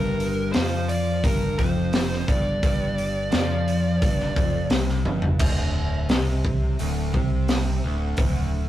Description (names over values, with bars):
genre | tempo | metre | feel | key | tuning
psychedelic rock | 86 BPM | 4/4 | straight | D minor | A4 = 438 Hz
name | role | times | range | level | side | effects
fuzz lead guitar | melody | 0.0-4.7 s | Bb4 to D5 | -28 LUFS | right 1 dB | distortion
overdriven semi-hollow guitar | riff | 0.0-8.7 s | D2 to F3 | -27 LUFS | left 1 dB | none
fingered electric bass | bass | 0.0-8.7 s | D1 to F2 | -26 LUFS | equal | none
raw garage drum kit | drums | 0.2-8.3 s | crash cymbal, hi-hat, kick drum, snare drum, toms | -24 LUFS | equal | none
room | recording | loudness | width
light reverb | rough rehearsal-room recording, warm saturation | -20 LUFS | side -13 dB against mid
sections
0.0-5.4 A section; 5.4-8.7 B section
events
drum fill 5.1-5.4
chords
0.0 G5; 5.4 D7(no3)